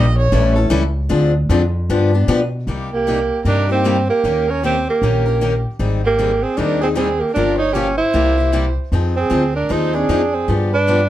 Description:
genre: acoustic string swing (jazz manouche).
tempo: 153 BPM.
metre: 4/4.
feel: swing 62% on 8ths.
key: C minor.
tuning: A4 = 440 Hz.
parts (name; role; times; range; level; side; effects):
dark violin; second line; 0.0-0.5, 2.9-11.1 s; G4 to Eb5; -23 LUFS; right 4 dB; none.
picked steel-string acoustic guitar; accompaniment; 0.0-11.0 s; C3 to Bb4; -20 LUFS; left 4 dB; none.
upright bass; bass; 0.0-11.1 s; G1 to B2; -18 LUFS; equal; none.
clear tenor saxophone; melody; 2.9-11.1 s; Bb3 to E4; -18 LUFS; right 3 dB; none.
room: light reverb.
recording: dark, warm production.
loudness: -15 LUFS.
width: side -13 dB against mid.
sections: 0.0-2.7 A section; 2.7-11.1 B section.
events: violin solo 0.0-2.7.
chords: 0.3 A7; 1.1 Dm7b5; 1.9 G7; 2.7 Cm7; 4.2 Eb7; 5.8 Abmaj9; 7.4 Gm7b5; 8.1 C7; 8.9 Fm7; 10.5 G7.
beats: 0.33 0.72 | 1.11 1.50 1.89 2.28 | 2.67 3.06 3.45 3.84 | 4.24 4.63 5.02 5.41 | 5.80 6.19 6.58 6.97 | 7.36 7.75 8.15 8.54 | 8.93 9.32 9.71 10.10 | 10.49 10.89.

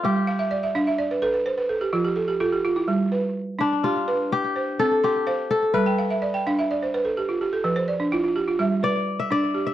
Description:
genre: west african traditional.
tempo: 84 BPM (dotted quarters).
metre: 12/8.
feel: straight.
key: G mixolydian.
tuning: A4 = 439 Hz.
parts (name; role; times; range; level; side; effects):
kora; melody; 0.0-9.7 s; D4 to E5; -24 LUFS; left 4 dB; slapback echo.
balafon; arpeggios; 0.0-9.7 s; F3 to C6; -22 LUFS; right 2 dB; none.
room: little or no reverb.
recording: dry, close 1970s-style studio recording.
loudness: -21 LUFS.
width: side -12 dB against mid.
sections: 0.0-9.7 A section.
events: balafon fill 0.3-2.9, 5.9-8.6.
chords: 0.0 G; 1.5 N.C.; 2.9 G; 4.3 C5; 5.7 G; 7.2 N.C.; 8.6 G.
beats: | 0.03 0.75 1.46 2.17 | 2.89 3.60 4.31 5.03 | 5.74 6.46 7.17 7.88 | 8.60 9.31.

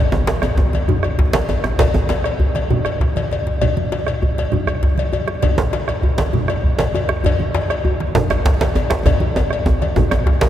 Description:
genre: west african traditional, West African drum ensemble.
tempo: 132 BPM (dotted quarters).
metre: 12/8.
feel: straight.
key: none.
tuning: none.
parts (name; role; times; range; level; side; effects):
congas; percussion; 0.1-10.5 s; none; -24 LUFS; right 3 dB; none.
djembe; percussion; 0.1-10.5 s; none; -23 LUFS; left 3 dB; none.
djembe; percussion; 0.1-2.2, 5.6-10.5 s; none; -22 LUFS; right 1 dB; none.
bombo; percussion; 0.4-10.4 s; none; -19 LUFS; equal; none.
cowbell; percussion; 0.4-10.5 s; none; -25 LUFS; left 5 dB; none.
room: wet cathedral reverb, RT60 6.0 s.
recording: recorded in a church or concert hall.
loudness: -15 LUFS.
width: side -11 dB against mid.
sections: 0.0-10.5 A section.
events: drum fill 3.2-3.6, 9.1-10.5.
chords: none.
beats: 0.43 0.88 1.34 | 1.79 2.25 2.71 3.16 | 3.62 4.07 4.52 4.98 | 5.43 5.88 6.34 6.79 | 7.24 7.70 8.15 8.60 | 9.05 9.51 9.96 10.41.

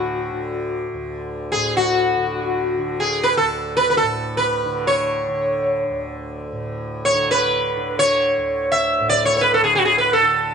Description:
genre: indian classical, Hindustani.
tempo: free time.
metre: none.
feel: none.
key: D raga yaman.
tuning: A4 = 441 Hz.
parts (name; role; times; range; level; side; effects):
sitar; melody; 0.0-10.5 s; F#4 to E5; -17 LUFS; equal; plate reverb.
tanpura; drone; 0.0-10.5 s; D2 to D3; -28 LUFS; right 1 dB; none.
room: moderate studio reverb, RT60 0.5 s.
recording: nothing above 10.5 kHz.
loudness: -17 LUFS.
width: side -6 dB against mid.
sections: 0.0-10.5 A section.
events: none.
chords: none.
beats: free time.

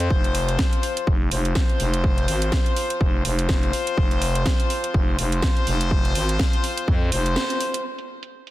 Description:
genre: bass house.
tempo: 124 BPM.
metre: 4/4.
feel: swing 57% on 16ths.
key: unclear.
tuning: A4 = 440 Hz.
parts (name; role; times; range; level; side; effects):
warm horn section; stabs; 0.0-7.8 s; F3 to C5; -26 LUFS; left 2 dB; sidechain pumping, low-pass filter, ping-pong delay.
growling FM bass; bass; 0.0-7.4 s; F1 to F2; -23 LUFS; equal; overdrive, sidechain pumping.
house drum kit; drums; 0.0-8.5 s; hi-hat, snare drum; -28 LUFS; right 1 dB; overdrive, low-pass filter on hats, low-pass filter on snare, low-pass filter on room.
electronic kick drum; drums; 0.1-7.0 s; none; -21 LUFS; equal; overdrive.
room: little or no reverb.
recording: dense, heavily limited modern master.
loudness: -19 LUFS.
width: side -15 dB against mid.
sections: 0.0-7.8 A section.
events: break 7.4-7.8; band accent 7.4.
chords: 0.0 F5; 7.8 N.C..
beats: | 0.10 0.59 1.07 1.56 | 2.04 2.52 3.01 3.49 | 3.98 4.46 4.94 5.43 | 5.91 6.39 6.88 7.36 | 7.85 8.33.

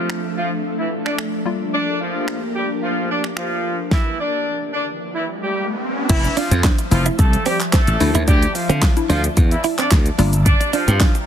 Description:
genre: dance-pop.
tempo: 110 BPM.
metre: 4/4.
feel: straight.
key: G dorian.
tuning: A4 = 439 Hz.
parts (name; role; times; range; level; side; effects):
clear horn section; melody; 0.0-11.1 s; E3 to D5; -23 LUFS; equal; sidechain pumping, low-pass filter, ping-pong delay.
hollow square pluck; accompaniment; 0.0-11.1 s; F3 to E5; -25 LUFS; left 6 dB; chorus, sidechain pumping, low-pass filter.
ethereal airy pad; sustained chords; 0.0-11.3 s; F3 to Bb5; -27 LUFS; equal; ensemble chorus, built-in reverb, sidechain pumping, low-pass filter.
pop drum kit; drums; 0.1-11.3 s; crash cymbal, finger snaps, handclaps, hi-hat, kick drum, shaker, snare drum; -17 LUFS; equal; soft clipping on snare.
riser; sound effects; 5.0-6.1 s; none; -27 LUFS; equal; none.
slap bass; bass; 6.1-11.0 s; F1 to D3; -18 LUFS; equal; sidechain pumping.
direct-recorded clean electric guitar; riff; 6.2-11.2 s; C4 to E4; -24 LUFS; right 8 dB; lush chorus.
room: light reverb.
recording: dense, heavily limited modern master.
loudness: -16 LUFS.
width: side -9 dB against mid.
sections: 0.0-6.1 A section; 6.1-11.3 B section.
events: filter sweep 0.0-6.1; riser 5.0-6.1; drop 6.1-11.3.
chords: 0.0 Dmadd9; 1.5 Gm7; 3.9 Em7; 6.1 Fmaj7; 8.0 Dmadd9; 10.2 Gm7.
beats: 0.10 0.64 1.19 | 1.73 2.28 2.82 3.37 | 3.91 4.46 5.00 5.55 | 6.10 6.64 7.19 7.73 | 8.28 8.82 9.37 9.91 | 10.46 11.01.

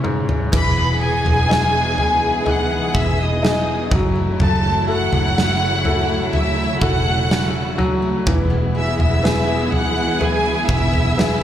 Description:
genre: pop ballad.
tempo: 62 BPM.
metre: 4/4.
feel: straight.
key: E major.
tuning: A4 = 443 Hz.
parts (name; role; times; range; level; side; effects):
warm symphonic violin section; melody; 0.0-11.4 s; G#4 to F#6; -21 LUFS; equal; slapback echo.
bright upright piano; accompaniment; 0.0-11.4 s; G#2 to A4; -24 LUFS; left 2 dB; slapback echo.
warm studio string section; sustained chords; 0.0-11.4 s; C#3 to C#5; -25 LUFS; equal; none.
huge arena drum kit; drums; 0.0-11.4 s; crash cymbal, kick drum, snare drum, toms; -21 LUFS; equal; none.
picked steel-string acoustic guitar; arpeggios; 0.5-11.4 s; F#2 to G#4; -28 LUFS; right 3 dB; slapback echo, digital delay.
vintage muted fingered electric bass; bass; 0.5-11.4 s; E1 to F#1; -22 LUFS; right 1 dB; none.
room: light reverb.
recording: live gig heard through the venue's PA, club reverb.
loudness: -16 LUFS.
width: side -10 dB against mid.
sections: 0.5-11.4 A section.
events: drum fill 0.0-0.5.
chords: 0.0 C#m; 0.5 Emaj7; 3.9 F#m7; 8.3 E.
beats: | 0.53 1.50 2.46 3.43 | 4.40 5.37 6.33 7.30 | 8.27 9.24 10.21 11.17.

